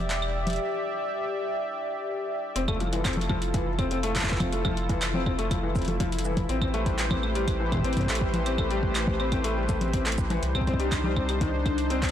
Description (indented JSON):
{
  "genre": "IDM",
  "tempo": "122 BPM",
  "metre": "4/4",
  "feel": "straight",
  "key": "F lydian",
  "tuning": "A4 = 440 Hz",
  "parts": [
    { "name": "warm analog pad", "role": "sustained chords", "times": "0.0-12.1 s", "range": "A3 to E5", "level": "-30 LUFS", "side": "equal", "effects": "chorus" },
    { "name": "round analog bass", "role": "bass", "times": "0.0-12.1 s", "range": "E1 to C2", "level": "-30 LUFS", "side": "equal", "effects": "none" },
    { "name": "booming analog drum machine", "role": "drums", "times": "0.1-12.1 s", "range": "claves, congas, handclaps, hi-hat, shaker", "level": "-32 LUFS", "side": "equal", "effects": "tape echo" },
    { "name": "felt-muted upright piano", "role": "arpeggios", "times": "2.6-12.1 s", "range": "D3 to C4", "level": "-31 LUFS", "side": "left 4 dB", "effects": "tape echo" },
    { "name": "electronic kick drum", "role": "drums", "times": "2.7-12.1 s", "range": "none", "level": "-28 LUFS", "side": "equal", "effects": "none" }
  ],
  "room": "light reverb",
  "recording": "blown-out, overdriven recording, overdrive",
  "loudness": "-24 LUFS",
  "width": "side -10 dB against mid",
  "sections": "0.0-2.6 A section; 2.6-12.1 B section",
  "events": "break 0.6-2.6",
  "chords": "0.0 Em7; 2.6 Fmaj7; 6.5 Am7; 10.4 Cmadd9"
}